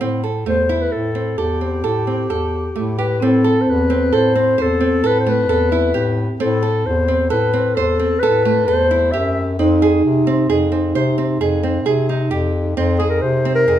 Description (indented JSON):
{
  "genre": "contemporary instrumental, chamber music in an uneven meter",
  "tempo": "132 BPM",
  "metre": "7/4",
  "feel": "straight",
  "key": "A minor",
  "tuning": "A4 = 440 Hz",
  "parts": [
    { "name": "nylon-string guitar", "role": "arpeggios", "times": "0.0-13.8 s", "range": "A3 to C5", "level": "-20 LUFS", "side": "right 5 dB", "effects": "none" },
    { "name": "mellow bass clarinet", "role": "bass", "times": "0.0-13.8 s", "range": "E2 to C3", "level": "-20 LUFS", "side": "left 2 dB", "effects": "none" },
    { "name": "mellow clarinet", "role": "melody", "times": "0.5-13.8 s", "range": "G4 to E5", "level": "-18 LUFS", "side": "left 3 dB", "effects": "none" },
    { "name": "vibraphone with soft mallets", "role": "second line", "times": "3.2-13.8 s", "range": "C4 to Eb4", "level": "-21 LUFS", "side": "right 1 dB", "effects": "none" }
  ],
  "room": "moderate recital hall reverb, RT60 1.7 s",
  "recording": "minimal, uncompressed stereo recording",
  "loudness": "-15 LUFS",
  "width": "side -11 dB against mid",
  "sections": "0.0-3.2 A section; 3.2-13.8 B section",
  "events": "none",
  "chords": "0.0 Am7; 3.2 Am; 9.6 Fm7"
}